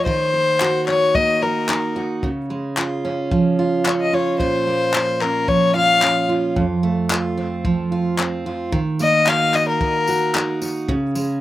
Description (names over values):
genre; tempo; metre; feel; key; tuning
acoustic pop; 111 BPM; 4/4; swing 55% on 16ths; unclear; A4 = 440 Hz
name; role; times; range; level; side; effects
rich violin; melody; 0.0-10.6 s; Bb4 to F5; -18 LUFS; left 3 dB; slapback echo
picked steel-string acoustic guitar; accompaniment; 0.0-11.4 s; F2 to Gb4; -20 LUFS; right 3 dB; none
compact cocktail drum kit; drums; 0.1-11.3 s; handclaps, kick drum, tambourine; -25 LUFS; left 1 dB; none
group handclap; percussion; 0.6-10.5 s; none; -27 LUFS; left 6 dB; none
room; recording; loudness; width
little or no reverb; recorded outdoors, with no room sound; -17 LUFS; side -14 dB against mid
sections
0.0-11.4 A section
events
none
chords
0.1 Ebm; 2.2 Db; 4.4 Bbm; 6.6 F; 8.7 Ebm; 10.9 Db5